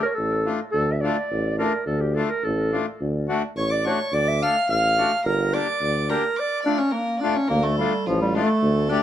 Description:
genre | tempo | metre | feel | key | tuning
klezmer | 106 BPM | 2/4 | straight | D harmonic minor | A4 = 440 Hz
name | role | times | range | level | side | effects
mellow clarinet | melody | 0.0-9.0 s | F3 to F5 | -23 LUFS | right 1 dB | tape echo
accordion | accompaniment | 0.0-9.0 s | A3 to A4 | -26 LUFS | left 4 dB | none
warm tuba | bass | 0.2-9.0 s | G1 to D2 | -25 LUFS | equal | none
rich violin | second line | 3.6-9.0 s | F4 to F6 | -28 LUFS | right 1 dB | none
room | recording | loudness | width
moderate small room reverb, RT60 0.5 s | heard from further back in the room | -20 LUFS | side -11 dB against mid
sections
0.0-7.5 A section; 7.5-9.0 B section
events
none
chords
0.0 Dm; 3.0 D; 5.3 Gm; 6.4 Dm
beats
0.17 | 0.74 1.30 | 1.87 2.43 | 3.00 3.56 | 4.13 4.69 | 5.25 5.82 | 6.38 6.94 | 7.50 8.07 | 8.63

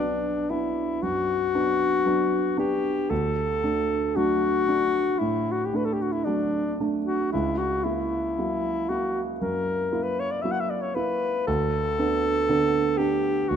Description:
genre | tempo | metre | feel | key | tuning
classical, romantic duo for alto saxophone and grand piano | 58 BPM | 4/4 | rubato | B minor | A4 = 441 Hz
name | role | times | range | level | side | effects
clear alto saxophone | melody | 0.0-13.6 s | D4 to F#5 | -25 LUFS | left 3 dB | none
warm concert grand piano | accompaniment | 0.0-13.6 s | B1 to E4 | -27 LUFS | right 3 dB | none
room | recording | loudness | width
moderate concert hall reverb, RT60 2.4 s | close, detailed microphones | -23 LUFS | side -8 dB against mid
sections
0.0-13.6 A section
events
none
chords
0.0 Bm; 3.1 D; 7.3 F#7/C#; 11.5 Bm/D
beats
1.03 2.07 | 3.11 4.16 5.20 6.26 | 7.32 8.37 9.41 10.44 | 11.47 12.49 13.50

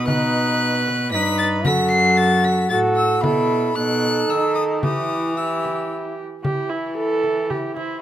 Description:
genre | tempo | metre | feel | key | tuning
classical, renaissance-style consort dance | 113 BPM | 3/4 | straight | E minor | A4 = 437 Hz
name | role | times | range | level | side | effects
warm violin | melody | 0.0-8.0 s | B4 to C7 | -23 LUFS | left 3 dB | none
warm viola | second line | 0.0-8.0 s | E4 to B4 | -23 LUFS | right 4 dB | none
rich cello | bass | 0.0-8.0 s | F#2 to E3 | -24 LUFS | equal | none
bright trombone | accompaniment | 0.1-8.0 s | D#4 to F#4 | -23 LUFS | left 1 dB | none
frame drum | percussion | 0.1-8.0 s | none | -25 LUFS | left 1 dB | none
room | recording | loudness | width
moderate stone room reverb, RT60 1.1 s | none | -17 LUFS | side -11 dB against mid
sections
0.0-6.4 A section; 6.4-8.0 B section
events
none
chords
0.0 B; 1.7 F#madd11; 3.2 B7sus4; 3.8 B7; 4.8 Em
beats
| 0.08 0.60 1.13 | 1.66 2.18 2.71 | 3.24 3.77 4.30 | 4.83 5.37 5.91 | 6.44 6.97 7.50

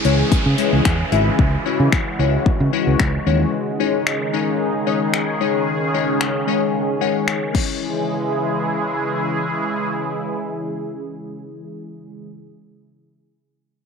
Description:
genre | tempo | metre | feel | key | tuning
dance-pop | 112 BPM | 4/4 | straight | C# minor | A4 = 440 Hz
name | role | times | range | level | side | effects
glassy digital keys | accompaniment | 0.0-12.3 s | G#3 to G#5 | -23 LUFS | left 12 dB | chorus, sidechain pumping
sweeping resonant pad | sustained chords | 0.0-12.3 s | C#3 to G#4 | -22 LUFS | right 1 dB | chorus, sidechain pumping
fingered electric bass | bass | 0.0-3.4 s | G#1 to C#3 | -18 LUFS | right 1 dB | sidechain pumping
pop drum kit | drums | 0.0-7.7 s | crash cymbal, finger snaps, hi-hat, kick drum | -21 LUFS | left 2 dB | none
downlifter | sound effects | 0.0-3.5 s | none | -28 LUFS | right 1 dB | none
room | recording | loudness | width
moderate spring reverb, RT60 2.0 s | 1960s-style stereo | -17 LUFS | side -6 dB against mid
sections
0.0-7.8 A section; 7.8-12.1 B section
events
kick muted 5.7-7.8; synth keys fill 6.7-7.8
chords
0.0 C#m; 3.5 G#sus4; 7.5 C#m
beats
0.32 0.85 | 1.39 1.92 2.46 3.00 | 3.53 4.07 4.60 5.14 | 5.67 6.21 6.75 7.28 | 7.82 8.35 8.89 9.42 | 9.96 10.49 11.03 11.57

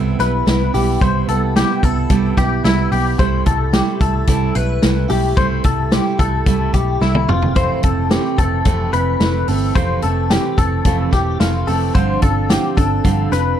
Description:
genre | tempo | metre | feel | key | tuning
jangly indie pop | 110 BPM | 4/4 | straight | C major | A4 = 440 Hz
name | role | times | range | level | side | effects
picked steel-string acoustic guitar | accompaniment | 0.0-13.6 s | F2 to E4 | -20 LUFS | right 9 dB | none
direct-recorded clean electric guitar | arpeggios | 0.0-13.6 s | E4 to C5 | -20 LUFS | left 5 dB | ensemble chorus, analog delay
vintage muted picked electric bass | bass | 0.0-13.5 s | E1 to C2 | -19 LUFS | equal | none
vintage drum kit | drums | 0.2-13.5 s | hi-hat, kick drum, snare drum, toms | -19 LUFS | equal | none
room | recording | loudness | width
light reverb | dark, warm production | -14 LUFS | side -10 dB against mid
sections
0.0-13.6 A section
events
drum fill 7.0-7.6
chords
0.0 Cmaj7; 7.3 Fmaj7; 11.9 G7sus4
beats
0.47 | 1.01 1.56 2.10 2.65 | 3.19 3.74 4.28 4.83 | 5.37 5.92 6.47 7.01 | 7.56 8.11 8.66 9.21 | 9.76 10.30 10.85 11.40 | 11.95 12.50 13.05 13.60

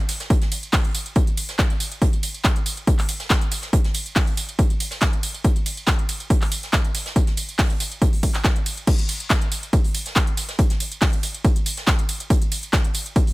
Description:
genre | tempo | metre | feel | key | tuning
techno | 140 BPM | 4/4 | straight | none | none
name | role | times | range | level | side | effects
soft brush drum kit | drums | 0.1-13.3 s | hi-hat, snare drum | -34 LUFS | right 2 dB | high-pass filter on hats, high-pass filter on snare, high-pass filter on room
techno drum kit | drums | 0.1-13.3 s | crash cymbal, handclaps, hi-hat, ride cymbal, tambourine | -25 LUFS | equal | sidechain pumping on hats, sidechain pumping on perc, sidechain pumping on cymbals
electronic kick drum | drums | 0.3-13.2 s | none | -19 LUFS | equal | none
room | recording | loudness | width
little or no reverb | none | -19 LUFS | side -20 dB against mid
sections
0.0-8.9 A section; 8.9-13.3 A section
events
drop 0.0-8.9, 8.9-13.3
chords
none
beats
| 0.30 0.73 1.16 1.59 | 2.02 2.44 2.87 3.30 | 3.73 4.16 4.59 5.02 | 5.45 5.87 6.30 6.73 | 7.16 7.59 8.02 8.45 | 8.87 9.30 9.73 10.16 | 10.59 11.02 11.45 11.87 | 12.30 12.73 13.16

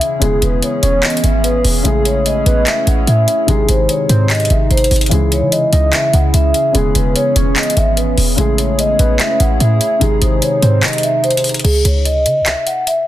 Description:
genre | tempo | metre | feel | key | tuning
hip hop, trap | 147 BPM | 4/4 | half-time | C# minor | A4 = 440 Hz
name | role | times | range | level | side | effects
vibraphone with soft mallets | melody | 0.0-13.1 s | G#4 to F#5 | -16 LUFS | equal | none
felt-muted upright piano | accompaniment | 0.0-11.7 s | B#2 to G#4 | -21 LUFS | left 6 dB | none
warbly tape-like pad | sustained chords | 0.0-11.6 s | B#2 to C#5 | -22 LUFS | right 2 dB | chorus, built-in reverb
trap drum kit | drums | 0.0-13.0 s | crash cymbal, handclaps, hi-hat | -18 LUFS | left 1 dB | none
short 808-style bass | bass | 0.2-12.6 s | E1 to E3 | -14 LUFS | equal | none
soft octave-layered synth lead | second line | 0.8-10.8 s | B4 to D#5 | -26 LUFS | right 2 dB | chorus, digital delay
room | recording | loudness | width
digital ambience | dense, heavily limited modern master | -11 LUFS | side -13 dB against mid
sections
0.0-11.6 A section; 11.6-13.1 B section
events
kick muted 10.8-11.6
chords
0.2 E6; 1.8 Amaj7; 3.5 G#; 5.1 C#m; 6.7 E6; 8.4 Amaj7; 10.0 G#; 11.6 C#m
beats
| 0.22 0.62 1.03 1.44 | 1.85 2.26 2.67 3.07 | 3.48 3.89 4.30 4.71 | 5.12 5.52 5.93 6.34 | 6.75 7.16 7.56 7.97 | 8.38 8.79 9.20 9.60 | 10.01 10.42 10.83 11.24 | 11.64 12.05 12.46 12.87

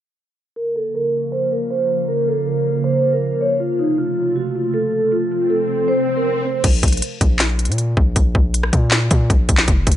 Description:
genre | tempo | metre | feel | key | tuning
hip hop, trap | 158 BPM | 4/4 | half-time | Bb harmonic minor | A4 = 440 Hz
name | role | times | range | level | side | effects
vibraphone with soft mallets | melody | 0.6-6.6 s | Eb4 to Db5 | -19 LUFS | right 1 dB | low-pass filter, tape echo
glassy FM pad | sustained chords | 0.9-6.6 s | C3 to F4 | -24 LUFS | right 1 dB | ensemble chorus, built-in reverb, low-pass filter
swell | sound effects | 5.4-6.6 s | none | -23 LUFS | left 1 dB | none
long sustained 808-style bass | bass | 6.6-10.0 s | F1 to Bb2 | -18 LUFS | equal | none
trap drum kit | drums | 6.6-10.0 s | crash cymbal, handclaps, hi-hat, kick drum, rim click, snare drum | -16 LUFS | equal | none
room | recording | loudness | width
little or no reverb | echo-heavy mix, nothing above 10.7 kHz | -16 LUFS | side -12 dB against mid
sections
0.6-6.6 A section; 6.6-10.0 B section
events
filter sweep 0.6-6.6; swell 5.4-6.6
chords
0.6 Bbm; 3.6 F; 6.6 N.C.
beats
| 0.56 0.94 1.32 1.70 | 2.08 2.46 2.84 3.22 | 3.60 3.98 4.36 4.74 | 5.12 5.50 5.88 6.26 | 6.64 7.02 7.40 7.78 | 8.16 8.54 8.92 9.30 | 9.68

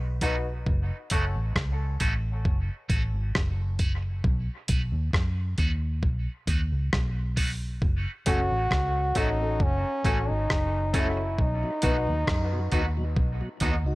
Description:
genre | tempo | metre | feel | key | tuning
dub reggae | 67 BPM | 4/4 | straight | F# dorian | A4 = 436 Hz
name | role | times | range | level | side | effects
vintage muted fingered electric bass | bass | 0.0-13.9 s | F#1 to F#2 | -28 LUFS | equal | none
electric guitar at the edge of break-up | accompaniment | 0.2-13.7 s | A3 to F#4 | -34 LUFS | right 2 dB | warbly pitch drift, high-pass filter, dub echo
dark upright piano | stabs | 0.2-1.3, 8.3-12.1 s | C#4 to B4 | -36 LUFS | left 3 dB | high-pass filter, dub echo
dusty soul sampler-style drum kit | drums | 0.2-13.8 s | hi-hat, kick drum, rim click | -26 LUFS | equal | none
bright trombone | melody | 8.3-13.2 s | C#4 to F#4 | -29 LUFS | equal | dub echo
mellow tonewheel organ | accompaniment | 11.6-13.9 s | B2 to F#4 | -36 LUFS | left 1 dB | slow rotary speaker, dub echo
room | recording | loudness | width
little or no reverb | none | -24 LUFS | side -20 dB against mid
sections
0.0-13.9 A section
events
break 0.0-11.4; filter sweep 0.0-7.8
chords
0.0 B; 0.7 F#m; 4.2 B; 7.8 F#m; 11.4 B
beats
| 0.67 1.56 2.45 3.35 | 4.24 5.13 6.03 6.92 | 7.82 8.71 9.60 10.49 | 11.39 12.28 13.17

